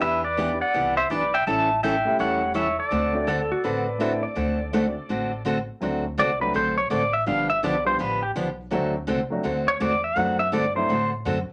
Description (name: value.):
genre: country, western swing.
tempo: 165 BPM.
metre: 4/4.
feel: swing 63% on 8ths.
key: D mixolydian.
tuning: A4 = 440 Hz.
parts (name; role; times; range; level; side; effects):
pedal steel guitar; melody; 0.0-11.1 s; G4 to A5; -26 LUFS; equal; none.
picked steel-string acoustic guitar; accompaniment; 0.0-11.4 s; D3 to A4; -29 LUFS; equal; none.
upright bass; bass; 0.0-11.5 s; E1 to A2; -36 LUFS; equal; none.
warm upright piano; accompaniment; 0.4-10.9 s; F3 to G4; -31 LUFS; equal; none.
clean lap steel guitar; second line; 3.3-5.3 s; F#4 to D5; -32 LUFS; equal; none.
room: moderate club reverb, RT60 0.5 s.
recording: none.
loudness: -24 LUFS.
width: mono.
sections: 0.0-5.8 A section; 5.8-11.5 B section.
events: pedal steel guitar solo 5.8-11.5.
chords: 0.0 Em7; 1.5 A7; 2.9 D7; 7.3 G7; 8.7 D7.